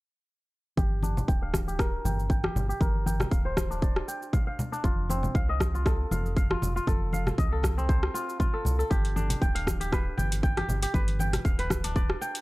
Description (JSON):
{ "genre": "afro house", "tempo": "118 BPM", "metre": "4/4", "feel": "swing 54% on 16ths", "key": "unclear", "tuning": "A4 = 445 Hz", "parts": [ { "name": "kora", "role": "arpeggios", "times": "0.8-12.4 s", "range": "C4 to G5", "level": "-33 LUFS", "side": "equal", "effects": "sidechain pumping, low-pass filter, tape echo" }, { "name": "round analog bass", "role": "bass", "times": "0.8-12.2 s", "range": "D1 to C2", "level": "-30 LUFS", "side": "equal", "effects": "sidechain pumping" }, { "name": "afro-pop drum kit", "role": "drums", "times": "0.8-12.4 s", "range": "hi-hat, rim click, shaker", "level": "-34 LUFS", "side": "equal", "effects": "none" }, { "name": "electronic kick drum", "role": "drums", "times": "0.8-12.1 s", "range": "none", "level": "-27 LUFS", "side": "equal", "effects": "none" }, { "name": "congas", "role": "percussion", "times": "0.8-11.8 s", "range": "none", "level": "-34 LUFS", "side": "left 1 dB", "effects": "none" } ], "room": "little or no reverb", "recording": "dry, gritty hardware recording", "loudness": "-25 LUFS", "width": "side -20 dB against mid", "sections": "0.8-12.4 A section", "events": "filter sweep on kora 0.8-12.4", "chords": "0.8 Gm; 4.8 F7; 8.9 G7" }